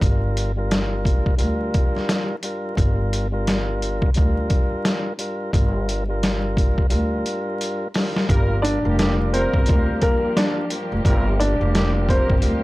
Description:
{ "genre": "hip hop, boom-bap hip-hop", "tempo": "87 BPM", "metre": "4/4", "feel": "swing 61% on 16ths", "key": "G minor", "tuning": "A4 = 441 Hz", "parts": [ { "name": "tonewheel organ", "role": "accompaniment", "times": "0.0-12.6 s", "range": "G2 to Bb4", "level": "-26 LUFS", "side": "equal", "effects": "overdrive, stopped rotary speaker, high-pass filter, low-pass filter" }, { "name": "upright bass", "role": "bass", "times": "0.0-12.6 s", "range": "F1 to D2", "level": "-22 LUFS", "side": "equal", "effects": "none" }, { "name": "trip hop sampler-style drum kit", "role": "drums", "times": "0.0-12.6 s", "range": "hi-hat, kick drum, snare drum", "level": "-20 LUFS", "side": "equal", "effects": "none" }, { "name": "warm studio string section", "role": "sustained chords", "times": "8.3-12.6 s", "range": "F3 to G4", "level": "-34 LUFS", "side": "left 1 dB", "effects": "high-pass filter, low-pass filter" }, { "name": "mellow horn section", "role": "stabs", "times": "8.3-12.4 s", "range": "D3 to Bb4", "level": "-30 LUFS", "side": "right 1 dB", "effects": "high-pass filter, low-pass filter, analog delay" }, { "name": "warm upright piano", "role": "melody", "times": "8.6-12.6 s", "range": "Bb3 to D5", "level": "-23 LUFS", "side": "equal", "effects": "high-pass filter, low-pass filter" } ], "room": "small room ambience", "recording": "dry, gritty hardware recording, transformer saturation, vinyl crackle", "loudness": "-18 LUFS", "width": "side -19 dB against mid", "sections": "0.0-8.3 A section; 8.3-12.6 B section", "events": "drum fill 6.9-8.3", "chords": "0.0 Gm7", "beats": "| 0.02 0.71 1.40 2.09 | 2.78 3.47 4.16 4.85 | 5.54 6.23 6.92 7.61 | 8.29 8.98 9.67 10.36 | 11.05 11.74 12.43" }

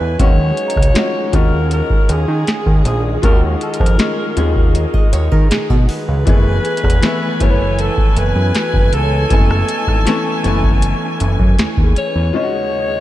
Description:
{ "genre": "contemporary R&B", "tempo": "79 BPM", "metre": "4/4", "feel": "straight", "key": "Eb minor", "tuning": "A4 = 440 Hz", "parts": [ { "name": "growling alto saxophone", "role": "melody", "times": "0.0-13.0 s", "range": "Ab4 to Db5", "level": "-22 LUFS", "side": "equal", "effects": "analog delay" }, { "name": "clear grand piano", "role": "accompaniment", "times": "0.0-13.0 s", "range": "Fb3 to Ab5", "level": "-22 LUFS", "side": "left 4 dB", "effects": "none" }, { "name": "warm studio string section", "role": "sustained chords", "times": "0.0-13.0 s", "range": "Eb2 to Ab5", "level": "-24 LUFS", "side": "right 2 dB", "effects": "none" }, { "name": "nylon-string guitar", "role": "arpeggios", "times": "0.0-0.2, 4.9-6.2 s", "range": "Gb4 to Eb5", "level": "-28 LUFS", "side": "right 3 dB", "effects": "analog delay" }, { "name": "fat analog bass", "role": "bass", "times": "0.0-12.3 s", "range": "Fb1 to Eb3", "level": "-16 LUFS", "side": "equal", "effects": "none" }, { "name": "soft synth bell", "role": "texture", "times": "0.0-13.0 s", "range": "Fb4 to Bb5", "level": "-31 LUFS", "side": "equal", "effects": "none" }, { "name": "booming analog drum machine", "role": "drums", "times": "0.2-12.1 s", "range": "hi-hat, kick drum, rim click, snare drum", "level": "-14 LUFS", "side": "equal", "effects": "none" } ], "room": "light reverb, small room ambience", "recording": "none", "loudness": "-12 LUFS", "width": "side -14 dB against mid", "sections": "0.0-12.3 A section", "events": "none", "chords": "0.2 Ebm11; 6.3 Gbm11; 12.3 Ebm11", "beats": "| 0.19 0.95 1.71 2.47 | 3.23 3.99 4.75 5.51 | 6.27 7.03 7.79 8.55 | 9.31 10.06 10.82 11.58 | 12.34" }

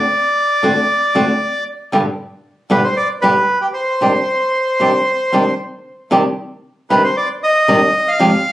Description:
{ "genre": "tango", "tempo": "115 BPM", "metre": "4/4", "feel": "rubato", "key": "C harmonic minor", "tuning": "A4 = 437 Hz", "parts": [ { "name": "bandoneon", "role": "melody", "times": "0.0-8.5 s", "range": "G4 to F5", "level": "-14 LUFS", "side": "equal", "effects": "plate reverb" }, { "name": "flamenco guitar", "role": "accompaniment", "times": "0.6-8.3 s", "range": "F2 to G4", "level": "-15 LUFS", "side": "equal", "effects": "none" } ], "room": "wet studio reverb, RT60 0.8 s", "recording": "recorded on a phone in the room, club reverb", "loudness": "-13 LUFS", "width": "side -14 dB against mid", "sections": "0.0-6.1 A section; 6.1-8.5 A section", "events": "none", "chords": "0.0 D7; 1.9 G; 4.0 Cmadd9", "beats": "0.37 0.89 1.41 | 1.93 2.45 2.97 3.49 | 4.01 4.54 5.06 5.59 | 6.12 6.65 7.17 7.69 | 8.21" }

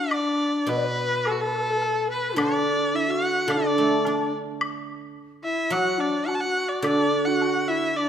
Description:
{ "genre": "chinese traditional, Chinese chamber ensemble", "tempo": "106 BPM", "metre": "4/4", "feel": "straight", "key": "D gong mode", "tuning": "A4 = 437 Hz", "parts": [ { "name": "clear erhu", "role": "melody", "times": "0.0-8.1 s", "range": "F#4 to A5", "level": "-25 LUFS", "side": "equal", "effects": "none" }, { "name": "low xiao", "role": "second line", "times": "0.0-8.1 s", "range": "D4 to D5", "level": "-27 LUFS", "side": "left 3 dB", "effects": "none" }, { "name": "woodblock", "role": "percussion", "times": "0.1-8.1 s", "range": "none", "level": "-33 LUFS", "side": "left 2 dB", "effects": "none" }, { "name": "guzheng", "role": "accompaniment", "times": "0.7-8.1 s", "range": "B2 to D4", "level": "-27 LUFS", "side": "right 3 dB", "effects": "none" } ], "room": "wet concert hall reverb, RT60 1.9 s", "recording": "none", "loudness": "-21 LUFS", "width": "side -8 dB against mid", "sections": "0.1-8.1 A section", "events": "none", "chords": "none", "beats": "| 0.11 0.68 1.25 1.81 | 2.38 2.94 3.49 4.05 | 4.61 5.16 5.72 6.28 | 6.84 7.41 7.98" }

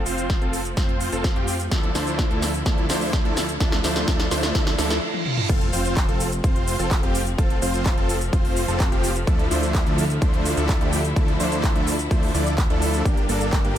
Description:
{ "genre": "EDM, festival progressive house", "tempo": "127 BPM", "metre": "4/4", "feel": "straight", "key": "F major", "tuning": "A4 = 441 Hz", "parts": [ { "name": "clear studio string section", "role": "sustained chords", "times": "0.0-13.8 s", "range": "D3 to E4", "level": "-31 LUFS", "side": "equal", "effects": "sidechain pumping, low-pass filter" }, { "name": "fat analog bass", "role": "bass", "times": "0.0-13.8 s", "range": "F1 to F2", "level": "-27 LUFS", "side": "equal", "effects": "sidechain pumping" }, { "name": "riser, reverse cymbal and impact", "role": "sound effects", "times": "1.5-7.4 s", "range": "none", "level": "-34 LUFS", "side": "right 1 dB", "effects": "none" }, { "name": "big supersaw lead", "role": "riff", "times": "0.1-13.8 s", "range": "F3 to D5", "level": "-25 LUFS", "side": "equal", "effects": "cassette tape, sidechain pumping, low-pass filter, digital delay" }, { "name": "big-room dance drum kit", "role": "drums", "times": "0.1-13.7 s", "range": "crash cymbal, handclaps, hi-hat, shaker, snare drum, toms", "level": "-28 LUFS", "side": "equal", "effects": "none" }, { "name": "electronic kick drum", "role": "drums", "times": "0.3-13.6 s", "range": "none", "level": "-21 LUFS", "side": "equal", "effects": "overdrive" } ], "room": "light reverb", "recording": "none", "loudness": "-19 LUFS", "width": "side -11 dB against mid", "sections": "0.0-5.5 A section; 5.5-13.8 B section", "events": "build-up 0.0-5.5; drum fill 0.0-5.0, 5.1-5.5; reverse cymbal 4.5-5.5; stop 5.0-5.5; drop 5.5-13.8; impact 5.5-7.4", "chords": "0.0 F; 1.7 Dmadd9; 5.5 F; 9.3 Dmadd9; 13.1 Gm", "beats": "0.30 0.77 1.24 | 1.72 2.19 2.66 3.13 | 3.60 4.08 4.55 5.02 | 5.50 5.97 6.44 6.91 | 7.38 7.86 8.33 8.80 | 9.28 9.75 10.22 10.69 | 11.16 11.64 12.11 12.58 | 13.05 13.53" }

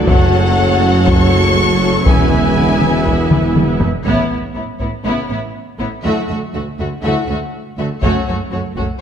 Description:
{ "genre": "cinematic, epic orchestral film score", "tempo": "121 BPM", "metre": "4/4", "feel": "straight", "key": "A major", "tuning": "A4 = 436 Hz", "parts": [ { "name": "rich symphonic violin section", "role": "second line", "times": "0.0-8.8 s", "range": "E4 to E5", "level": "-23 LUFS", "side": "left 4 dB", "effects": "none" }, { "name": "warm symphonic viola section", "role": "accompaniment", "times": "0.0-8.9 s", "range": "F#3 to F#4", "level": "-22 LUFS", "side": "right 2 dB", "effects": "none" }, { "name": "dark trombone section", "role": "sustained chords", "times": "0.0-3.8 s", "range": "C#3 to B3", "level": "-24 LUFS", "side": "right 2 dB", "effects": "none" }, { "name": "mellow French horn section", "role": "sustained chords", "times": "0.0-8.2 s", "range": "C#3 to F#4", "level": "-22 LUFS", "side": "left 2 dB", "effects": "none" }, { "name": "mellow tuba", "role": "bass", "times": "0.0-3.8 s", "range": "E1 to F#1", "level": "-21 LUFS", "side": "right 2 dB", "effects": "none" }, { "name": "warm symphonic cello section", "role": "bass", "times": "0.0-8.8 s", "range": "D2 to A2", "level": "-21 LUFS", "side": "right 2 dB", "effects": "none" }, { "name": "warm symphonic double bass section", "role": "bass", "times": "0.0-8.8 s", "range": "E1 to D2", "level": "-22 LUFS", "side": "right 4 dB", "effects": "none" }, { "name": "warm symphonic violin section", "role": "melody", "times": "0.1-8.9 s", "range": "C#5 to C#6", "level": "-22 LUFS", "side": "left 4 dB", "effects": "none" }, { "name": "taiko ensemble", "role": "drums", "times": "0.1-5.0, 8.0-9.0 s", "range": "none", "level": "-17 LUFS", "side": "left 1 dB", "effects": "none" } ], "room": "wet scoring stage reverb, RT60 1.6 s", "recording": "none", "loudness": "-13 LUFS", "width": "side -8 dB against mid", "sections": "0.0-4.1 A section; 4.1-9.0 B section", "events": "drum fill 3.3-4.1; band accent 4.1-4.6", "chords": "0.1 F#m; 2.1 E; 4.1 Aadd9; 6.0 Dadd9; 8.0 F#m", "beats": "| 0.09 0.59 1.08 1.58 | 2.08 2.57 3.07 3.56 | 4.06 4.55 5.05 5.55 | 6.04 6.54 7.03 7.53 | 8.03 8.52" }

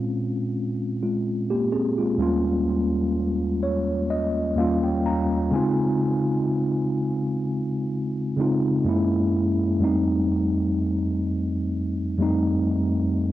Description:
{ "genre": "R&B", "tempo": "63 BPM", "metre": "4/4", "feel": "swing 54% on 16ths", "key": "Bb dorian", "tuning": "A4 = 440 Hz", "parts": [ { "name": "mellow tine electric piano", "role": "solo", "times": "0.0-13.3 s", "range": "Eb2 to Bb5", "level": "-21 LUFS", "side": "equal", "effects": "medium stereo tremolo, cassette tape, tape echo" } ], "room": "light reverb", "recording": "home recording on cassette", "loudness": "-21 LUFS", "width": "side -14 dB against mid", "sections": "0.0-13.3 A section", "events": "tine electric piano fill 3.1-6.0", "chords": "0.0 Bbm7; 2.2 Eb7; 5.5 Dbmaj7; 8.9 Gb9; 9.8 F7", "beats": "0.29 1.24 | 2.19 3.15 4.10 5.05 | 6.00 6.96 7.91 8.86 | 9.81 10.77 11.72 12.67" }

